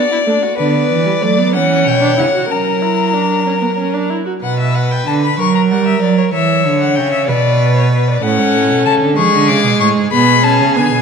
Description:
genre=classical, baroque-style fugue for string quartet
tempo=63 BPM (dotted quarters)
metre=6/8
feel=straight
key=B minor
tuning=A4 = 440 Hz
part: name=rich violin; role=melody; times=0.0-11.0 s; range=B4 to D6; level=-16 LUFS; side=left 7 dB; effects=none
part: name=rich violin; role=second line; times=0.0-11.0 s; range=D4 to D5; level=-18 LUFS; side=left 2 dB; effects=none
part: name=warm viola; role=accompaniment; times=0.0-4.3, 8.2-11.0 s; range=G3 to F#4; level=-17 LUFS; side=right 3 dB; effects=none
part: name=rich cello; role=bass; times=0.6-11.0 s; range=G#2 to G3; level=-16 LUFS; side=right 4 dB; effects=none
room=moderate concert hall reverb, RT60 1.7 s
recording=dark, warm production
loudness=-11 LUFS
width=side -6 dB against mid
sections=0.6-4.4 A section; 4.4-11.0 B section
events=none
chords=0.0 D; 0.6 Bm/D; 1.6 C#m7b5; 2.5 F#; 4.4 Bm; 5.4 F#; 6.3 N.C.; 7.3 Bm; 8.2 F#m; 9.2 C#; 10.1 C#5/B

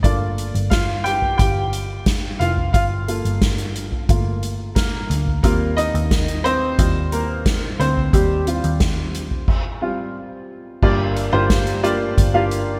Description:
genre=piano-driven pop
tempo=89 BPM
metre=4/4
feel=straight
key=G minor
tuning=A4 = 438 Hz
part: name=warm upright piano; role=accompaniment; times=0.0-12.8 s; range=G2 to G5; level=-24 LUFS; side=equal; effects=analog chorus
part: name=vintage muted picked electric bass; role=bass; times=0.0-12.8 s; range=F1 to Eb2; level=-25 LUFS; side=equal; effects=none
part: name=soft-mallet drum kit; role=drums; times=0.0-12.7 s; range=crash cymbal, hi-hat, kick drum, snare drum, toms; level=-23 LUFS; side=equal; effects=gated reverb
room=light reverb, small room ambience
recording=bright 1980s-style digital production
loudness=-20 LUFS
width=mono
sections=0.0-10.8 A section; 10.8-12.8 A section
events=upright piano solo 0.0-10.8; stop 9.5-10.8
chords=0.0 Gm7; 5.4 Eb6; 10.8 Gm7

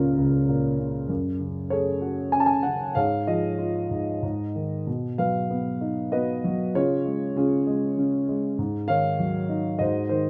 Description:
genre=classical, lyrical solo piano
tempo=97 BPM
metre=3/4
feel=rubato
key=Db major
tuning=A4 = 440 Hz
part: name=dark grand piano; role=solo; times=0.0-10.3 s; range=Db2 to A5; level=-25 LUFS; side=equal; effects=none
room=light reverb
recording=close, detailed microphones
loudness=-25 LUFS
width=mono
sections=0.0-10.3 A section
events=none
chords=0.0 Bbm/Db; 1.1 Gbmadd9; 3.0 Db/Ab; 4.2 Ab5; 4.9 Cb; 6.7 Db; 8.6 Ab7sus4

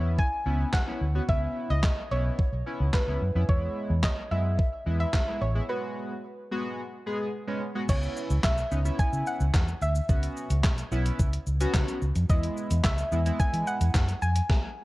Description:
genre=dance-pop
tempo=109 BPM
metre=4/4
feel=straight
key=C# minor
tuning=A4 = 440 Hz
part: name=soft round pluck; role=melody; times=0.0-14.8 s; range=B4 to G#5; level=-33 LUFS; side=right 1 dB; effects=chorus
part: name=chorused polysynth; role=accompaniment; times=0.0-13.9 s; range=G#3 to G#4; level=-34 LUFS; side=equal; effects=sidechain pumping
part: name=vintage muted fingered electric bass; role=bass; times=0.0-14.4 s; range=A1 to E3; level=-26 LUFS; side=equal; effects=sidechain pumping
part: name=gated 80s digital drum machine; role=drums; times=0.2-14.6 s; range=crash cymbal, handclaps, hi-hat, kick drum, shaker, snare drum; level=-26 LUFS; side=equal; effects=gated reverb, gated reverb snare
room=light reverb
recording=worn, warbling old tape, cassette tape, warbly pitch drift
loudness=-24 LUFS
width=side -19 dB against mid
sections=0.0-7.9 A section; 7.9-14.8 B section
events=break 5.7-7.9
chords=0.0 C#m7; 3.5 E; 5.7 G#m7; 7.9 C#m7; 12.3 E

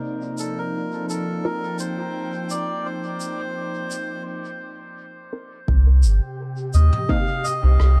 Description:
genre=ambient dub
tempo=85 BPM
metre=4/4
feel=swing 53% on 16ths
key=unclear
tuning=A4 = 440 Hz
part: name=airy breathy pad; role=sustained chords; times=0.0-8.0 s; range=C3 to G5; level=-32 LUFS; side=equal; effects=chorus
part: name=filtered dub chord stab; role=stabs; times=0.0-8.0 s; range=Bb3 to Bb4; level=-34 LUFS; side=equal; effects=phaser, dub echo
part: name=melodica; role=melody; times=0.4-8.0 s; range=A4 to F5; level=-32 LUFS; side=equal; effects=dub echo
part: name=soft brush drum kit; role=drums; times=0.4-7.9 s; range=rim click, shaker, toms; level=-33 LUFS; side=equal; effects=dub echo
part: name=soft dub sub bass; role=bass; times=5.7-8.0 s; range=G1 to Eb2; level=-16 LUFS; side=equal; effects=none
part: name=electronic kick drum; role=drums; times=5.7-7.2 s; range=none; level=-26 LUFS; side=equal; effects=none
part: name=wind-like tuned noise texture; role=texture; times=6.1-8.0 s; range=G4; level=-38 LUFS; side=equal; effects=built-in reverb
room=small room ambience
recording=echo-heavy mix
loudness=-22 LUFS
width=mono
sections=0.0-5.7 A section; 5.7-8.0 B section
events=filter sweep on analog synth pad 0.0-5.7; break 4.3-5.7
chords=0.0 F7sus4; 5.7 Cm7

